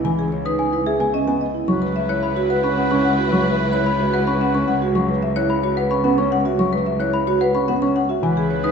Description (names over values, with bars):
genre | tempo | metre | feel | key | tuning
classical, minimalist pattern music | 110 BPM | 3/4 | straight | unclear | A4 = 440 Hz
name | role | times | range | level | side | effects
marimba with medium hard mallets | melody | 0.0-8.7 s | G#4 to C#6 | -23 LUFS | left 5 dB | none
dark concert grand piano | accompaniment | 0.0-8.4 s | E3 to C#4 | -23 LUFS | equal | none
vibraphone with soft mallets | arpeggios | 0.0-8.7 s | C#4 to B4 | -24 LUFS | right 5 dB | none
warm cello | bass | 0.0-8.7 s | C#2 | -24 LUFS | right 2 dB | none
celesta | arpeggios | 0.5-8.7 s | E5 to F#6 | -27 LUFS | left 4 dB | none
clear oboe | second line | 1.7-4.8, 8.2-8.7 s | B4 | -27 LUFS | right 4 dB | none
warm symphonic violin section | sustained chords | 1.7-4.8, 8.2-8.7 s | E4 to B4 | -29 LUFS | left 4 dB | none
room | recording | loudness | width
wet scoring stage reverb, RT60 1.6 s | nothing above 8.0 kHz | -17 LUFS | side -6 dB against mid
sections
0.0-8.7 A section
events
none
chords
0.0 C#m7; 1.7 Bsus4/C#